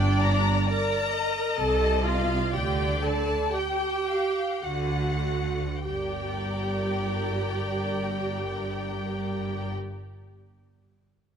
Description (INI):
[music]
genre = classical, slow romantic movement for string orchestra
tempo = 47-68 BPM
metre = 3/4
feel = rubato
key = G minor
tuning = A4 = 436 Hz
[part]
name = rich studio violin section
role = melody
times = 0.0-9.7 s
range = D5 to Bb5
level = -33 LUFS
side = left 6 dB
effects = none
[part]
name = clear studio violin section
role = second line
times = 0.0-9.7 s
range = Bb4 to Bb5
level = -33 LUFS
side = left 2 dB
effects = none
[part]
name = warm studio viola section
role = accompaniment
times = 0.0-9.7 s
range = D4 to Bb4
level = -29 LUFS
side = right 2 dB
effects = none
[part]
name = rich studio cello section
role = bass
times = 0.0-9.7 s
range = G2 to D3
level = -32 LUFS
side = right 2 dB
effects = none
[part]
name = warm studio double bass section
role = bass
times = 0.0-9.7 s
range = G1 to D2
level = -31 LUFS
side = right 1 dB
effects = none
[sound]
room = light reverb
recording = close, detailed microphones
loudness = -25 LUFS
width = side -7 dB against mid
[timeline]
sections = 0.0-5.9 A section; 5.9-9.4 B section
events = slowing down 0.0-5.9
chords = 0.0 Gm; 1.6 Adim/C; 2.5 G5/D; 5.9 Gm